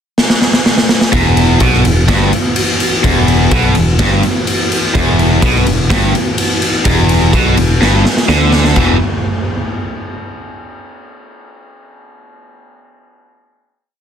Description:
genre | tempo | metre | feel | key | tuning
hard rock | 126 BPM | 4/4 | straight | E minor | A4 = 439 Hz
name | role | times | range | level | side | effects
raw garage drum kit | drums | 0.2-8.9 s | crash cymbal, kick drum, ride cymbal, snare drum | -13 LUFS | equal | none
mellow tonewheel organ | sustained chords | 1.1-9.0 s | E3 to F#4 | -23 LUFS | left 1 dB | none
cranked stack guitar | riff | 1.1-9.0 s | E2 to E3 | -16 LUFS | right 11 dB | overdrive
distorted electric guitar | riff | 1.1-9.0 s | E2 to E3 | -17 LUFS | left 13 dB | overdrive
picked electric bass | bass | 1.1-9.0 s | E1 to D2 | -14 LUFS | equal | none
room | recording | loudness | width
light reverb | dense, heavily limited modern master | -10 LUFS | side -8 dB against mid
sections
0.0-1.1 pickup bar; 1.1-8.8 riff; 8.8-10.7 final chord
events
drum fill 0.2-1.1, 7.8-8.8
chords
0.0 N.C.; 1.1 Em; 8.8 E5

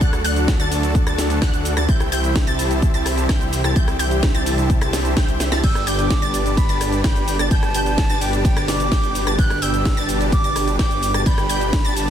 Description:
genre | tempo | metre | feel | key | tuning
EDM, festival progressive house | 128 BPM | 4/4 | straight | G major | A4 = 439 Hz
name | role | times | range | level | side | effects
muted studio string section | sustained chords | 0.0-12.1 s | B2 to A4 | -29 LUFS | equal | sidechain pumping
wide unison pluck | arpeggios | 0.0-12.1 s | F#6 to A6 | -28 LUFS | equal | ensemble chorus, sidechain pumping, ping-pong delay
dense compressed supersaw | riff | 0.0-12.1 s | D4 to A5 | -24 LUFS | equal | sidechain pumping, ping-pong delay
detuned saw bass | bass | 0.0-12.1 s | G1 to D2 | -23 LUFS | equal | tube saturation, sidechain pumping
electronic kick drum | drums | 0.0-11.8 s | none | -19 LUFS | equal | none
house drum kit | drums | 0.0-12.1 s | cabasa, crash cymbal, hi-hat, ride cymbal, rim click, snare drum | -26 LUFS | equal | soft clipping on snare
concert flute | melody | 5.6-12.1 s | G5 to F#6 | -25 LUFS | right 1 dB | ping-pong delay
room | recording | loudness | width
light reverb, digital ambience | dense, heavily limited modern master | -16 LUFS | side -9 dB against mid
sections
0.0-12.1 A section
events
drum fill 5.4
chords
0.0 D; 1.9 C; 5.6 G

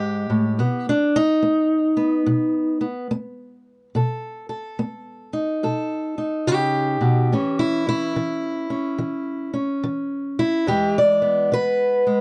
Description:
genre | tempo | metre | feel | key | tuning
acoustic country blues, solo or duo | 71 BPM | 4/4 | swing 64% on 8ths | unclear | A4 = 440 Hz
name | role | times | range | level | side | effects
fingerpicked steel-string acoustic guitar | solo | 0.0-12.2 s | E2 to D5 | -22 LUFS | equal | none
room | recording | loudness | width
moderate booth ambience, RT60 0.2 s | dark, warm production, nothing above 11.0 kHz | -22 LUFS | mono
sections
0.0-12.2 A section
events
steel-string acoustic guitar solo 0.0-12.2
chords
0.0 N.C.; 0.6 B7; 7.3 A; 10.7 E

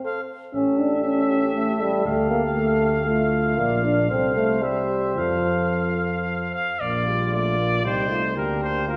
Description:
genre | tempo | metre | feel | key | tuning
classical, brass quintet | 108-120 BPM | 3/4 | rubato | F major | A4 = 440 Hz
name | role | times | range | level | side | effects
mellow flugelhorn | second line | 0.0-9.0 s | D4 to D5 | -31 LUFS | equal | none
warm French horn | accompaniment | 0.0-9.0 s | F4 to A4 | -33 LUFS | equal | none
warm euphonium | accompaniment | 0.0-9.0 s | F3 to D4 | -26 LUFS | equal | none
clear trumpet | melody | 0.1-9.0 s | Bb4 to F5 | -29 LUFS | equal | none
dark tuba | bass | 0.5-9.0 s | A1 to F2 | -30 LUFS | equal | none
room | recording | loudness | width
wet recital hall reverb, RT60 1.5 s | recorded in a church or concert hall | -22 LUFS | mono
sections
0.0-6.8 A section; 6.8-9.0 B section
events
none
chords
0.0 F/A; 0.5 A7; 2.1 Dm; 3.6 Bb; 4.1 F/C; 4.6 C; 5.2 F; 6.8 Bb; 8.4 Bb/D

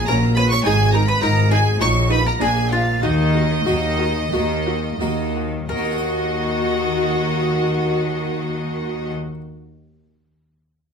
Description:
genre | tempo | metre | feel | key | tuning
classical, baroque-style concerto movement with solo episodes | 85-106 BPM | 4/4 | straight | Eb minor | A4 = 440 Hz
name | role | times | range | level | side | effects
clear chamber violin section | melody | 0.0-9.1 s | Eb5 to Db6 | -26 LUFS | equal | none
mandolin | melody | 0.0-9.1 s | Eb4 to Db5 | -25 LUFS | left 2 dB | none
clear chamber violin section | second line | 0.0-9.1 s | Gb4 to Db6 | -27 LUFS | right 1 dB | none
harpsichord | accompaniment | 0.1-9.4 s | Ab2 to Eb5 | -30 LUFS | right 2 dB | none
rich studio viola section | accompaniment | 0.1-9.1 s | Db4 to Gb4 | -25 LUFS | equal | none
bright symphonic double bass section | bass | 0.1-9.1 s | Ab1 to Eb2 | -22 LUFS | right 1 dB | none
rich symphonic cello section | bass | 0.1-9.1 s | Ab2 to Eb3 | -24 LUFS | left 1 dB | none
room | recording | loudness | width
moderate stone room reverb, RT60 0.9 s | none | -17 LUFS | side -6 dB against mid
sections
0.0-5.7 A section; 5.7-8.5 B section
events
slowing down 0.0-5.7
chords
0.0 Gb/Bb; 0.6 Abm69; 1.8 Ebm/Bb; 2.4 Bb7; 3.0 Ebm

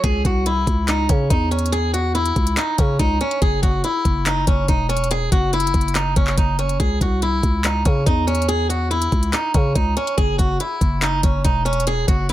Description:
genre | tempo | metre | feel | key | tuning
hip hop, trap | 142 BPM | 4/4 | half-time | C# harmonic minor | A4 = 440 Hz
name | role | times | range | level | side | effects
picked swing-style acoustic guitar | melody | 0.0-12.3 s | C#4 to G#4 | -21 LUFS | right 1 dB | low-pass filter
growling 808-style bass | bass | 0.0-12.3 s | E1 to C#3 | -21 LUFS | equal | none
trap drum kit | drums | 0.0-12.3 s | handclaps, hi-hat, kick drum | -20 LUFS | equal | none
room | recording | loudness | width
little or no reverb | none | -16 LUFS | side -14 dB against mid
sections
0.0-12.3 A section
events
none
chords
0.0 C#m; 3.4 Emaj7sus2; 6.8 C#m; 10.2 Esus2

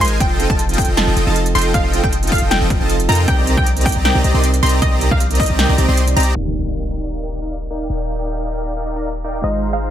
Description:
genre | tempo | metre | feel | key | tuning
future bass | 156 BPM | 4/4 | half-time | Eb major | A4 = 439 Hz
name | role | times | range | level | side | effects
wide unison pluck | melody | 0.0-6.3, 9.4-9.9 s | Eb5 to C6 | -21 LUFS | equal | sidechain pumping, digital delay
felt-muted upright piano | accompaniment | 0.0-9.9 s | C3 to D5 | -25 LUFS | right 7 dB | sidechain pumping, digital delay
supersaw chords | riff | 0.0-9.9 s | F3 to C6 | -21 LUFS | equal | sidechain pumping, low-pass filter
warm 808-style bass | bass | 0.0-9.9 s | Eb1 to F2 | -18 LUFS | equal | sidechain pumping
big-room dance drum kit | drums | 0.0-8.6 s | hi-hat, snare drum | -23 LUFS | equal | overdrive
electronic kick drum | drums | 0.2-5.5 s | none | -19 LUFS | left 1 dB | overdrive
impact | sound effects | 6.4-7.9 s | none | -26 LUFS | left 1 dB | none
room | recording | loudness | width
digital ambience | low-pass filter | -14 LUFS | side -10 dB against mid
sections
0.0-6.4 A section; 6.4-9.9 B section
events
drop 0.0-6.4; kick drops out 5.6-6.4; impact 6.4-7.9; filter sweep on supersaw synth 6.4-9.9; filter sweep 6.4-9.9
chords
0.2 F7; 3.3 Cm7; 6.4 Ebmaj7

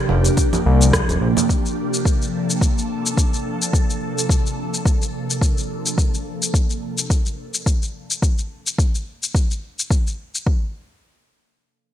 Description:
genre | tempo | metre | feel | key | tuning
organic downtempo | 107 BPM | 4/4 | swing 55% on 16ths | unclear | A4 = 438 Hz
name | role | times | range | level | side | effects
ethereal airy pad | sustained chords | 0.0-5.9 s | C3 to A4 | -24 LUFS | right 1 dB | ensemble chorus, built-in reverb, phaser, sidechain pumping
smooth synth bass | bass | 0.1-1.3 s | Eb1 to C2 | -16 LUFS | equal | tube saturation, sidechain pumping
organic electronic drum kit | drums | 0.1-10.4 s | congas, hi-hat, rim click, shaker | -24 LUFS | left 1 dB | overdrive, studio reverb, gated reverb
electronic kick drum | drums | 0.4-10.6 s | none | -18 LUFS | equal | overdrive, studio reverb
room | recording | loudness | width
little or no reverb | bright 1980s-style digital production | -18 LUFS | side -11 dB against mid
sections
0.0-10.5 A section; 10.5-11.9 B section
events
none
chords
0.0 Fsus4; 1.5 Bbmaj9; 6.0 N.C.

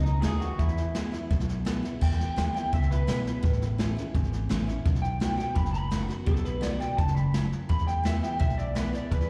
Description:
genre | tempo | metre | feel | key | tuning
rockabilly | 169 BPM | 4/4 | straight | unclear | A4 = 440 Hz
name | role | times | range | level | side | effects
electric guitar through a small old amp | melody | 0.0-9.3 s | D#4 to B5 | -36 LUFS | equal | analog chorus, slapback echo, tape echo
picked steel-string acoustic guitar | accompaniment | 0.0-9.3 s | E2 to F#4 | -37 LUFS | equal | none
upright bass | bass | 0.0-9.3 s | F#1 to E2 | -32 LUFS | equal | none
jazz brush drum kit | drums | 0.1-9.2 s | crash cymbal, hi-hat, kick drum, snare drum | -31 LUFS | equal | none
room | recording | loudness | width
light reverb | live gig heard through the venue's PA, recital hall reverb | -28 LUFS | mono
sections
0.0-2.0 A section; 2.0-9.3 B section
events
clean electric guitar solo 2.0-9.3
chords
0.0 B7; 0.6 E; 3.4 A; 4.9 B7; 7.7 E

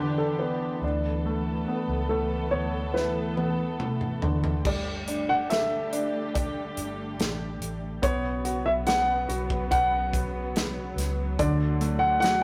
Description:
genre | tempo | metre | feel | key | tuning
pop ballad | 71 BPM | 4/4 | straight | unclear | A4 = 444 Hz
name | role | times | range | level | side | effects
dark grand piano | melody | 0.0-12.4 s | A4 to F#5 | -30 LUFS | equal | none
clear concert grand piano | accompaniment | 0.0-12.4 s | D3 to A4 | -33 LUFS | equal | none
warm studio string section | sustained chords | 0.0-12.4 s | C#3 to A4 | -36 LUFS | equal | none
vintage muted fingered electric bass | bass | 0.0-12.4 s | F#1 to E2 | -36 LUFS | equal | none
modern studio drum kit | drums | 3.0-12.4 s | crash cymbal, hi-hat, kick drum, snare drum, toms | -32 LUFS | equal | none
room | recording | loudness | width
moderate stone room reverb, RT60 1.1 s | rough rehearsal-room recording | -27 LUFS | mono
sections
0.0-4.7 A section; 4.7-12.4 B section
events
drum fill 2.9-4.7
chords
0.0 G6; 0.8 Asus2; 4.7 Gsus2; 8.0 Bsus2; 11.4 D

